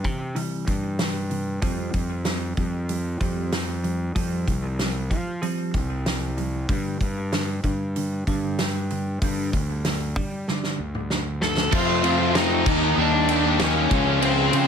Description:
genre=quiet-loud alternative rock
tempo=95 BPM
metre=4/4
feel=straight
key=F major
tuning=A4 = 439 Hz
part: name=clean electric guitar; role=arpeggios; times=0.0-11.7 s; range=G2 to C4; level=-30 LUFS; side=right 2 dB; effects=lush chorus, tape echo
part: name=fuzz fingered electric bass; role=bass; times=0.0-14.7 s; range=C2 to G3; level=-27 LUFS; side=equal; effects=overdrive
part: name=loose indie drum kit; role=drums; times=0.0-14.7 s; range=crash cymbal, hi-hat, kick drum, ride cymbal, snare drum, toms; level=-26 LUFS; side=equal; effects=none
part: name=octave-fuzz lead guitar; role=melody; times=11.4-14.7 s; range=C4 to A5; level=-24 LUFS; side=left 2 dB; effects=distortion, plate reverb
part: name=fuzz guitar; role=riff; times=11.7-14.7 s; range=Db3 to Ab4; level=-24 LUFS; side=left 14 dB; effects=distortion
part: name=overdriven electric guitar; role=riff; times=11.7-14.7 s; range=F2 to F4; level=-24 LUFS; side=right 14 dB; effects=none
room=light reverb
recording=none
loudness=-21 LUFS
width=side -7 dB against mid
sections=0.0-11.7 A section; 11.7-14.7 B section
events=drum fill 10.5-11.7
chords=0.0 C; 1.6 Fsus2; 6.7 G5; 11.7 F; 12.7 Eb; 13.9 Db

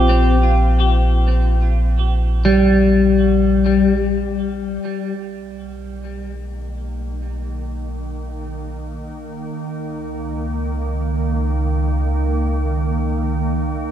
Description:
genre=ambient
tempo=free time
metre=none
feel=none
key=unclear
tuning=A4 = 436 Hz
part: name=clean electric guitar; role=arpeggios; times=0.0-3.9 s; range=G3 to G4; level=-17 LUFS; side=left 2 dB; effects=analog chorus, ping-pong delay, shimmer reverb
part: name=warm sub bass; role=bass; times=0.0-13.9 s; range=Bb1 to Db2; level=-19 LUFS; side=equal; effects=none
part: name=organ-like drone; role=drone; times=6.4-13.9 s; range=D#3 to Bb3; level=-25 LUFS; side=right 2 dB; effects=ensemble chorus, built-in reverb
room=moderate plate reverb, RT60 2.7 s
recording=dreamy mix soaked in reverb, cassette tape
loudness=-16 LUFS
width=side -10 dB against mid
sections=0.0-4.8 A section; 4.8-13.9 B section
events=fade-in on sub bass 4.8-13.9; fade-in on synth drone 4.8-13.9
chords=0.0 Bb5; 4.8 B; 9.6 Bbmadd11/Db

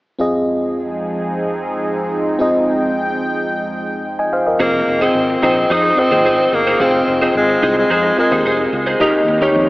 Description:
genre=pop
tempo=109 BPM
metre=4/4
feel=straight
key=F minor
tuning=A4 = 438 Hz
part: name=mellow FM electric piano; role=accompaniment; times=0.2-9.7 s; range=F2 to Ab5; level=-17 LUFS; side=equal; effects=chorus
part: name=phased analog pad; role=sustained chords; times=0.5-4.6 s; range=F3 to G5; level=-22 LUFS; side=right 1 dB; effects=phaser, chorus
part: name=breathy tenor saxophone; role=melody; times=4.6-8.7 s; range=Ab3 to Eb4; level=-16 LUFS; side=equal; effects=none
part: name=direct-recorded clean electric guitar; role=riff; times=4.6-9.5 s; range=Eb4 to C5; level=-20 LUFS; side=right 1 dB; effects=ensemble chorus
part: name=fretless electric bass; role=bass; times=4.6-9.7 s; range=F1 to F2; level=-26 LUFS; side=equal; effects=none
room=wet huge ambient reverb, RT60 8.7 s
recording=dreamy mix soaked in reverb, AM radio sound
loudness=-14 LUFS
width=side -19 dB against mid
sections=0.2-4.6 A section; 4.6-9.7 B section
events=none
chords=0.2 Fm7; 9.0 Eb

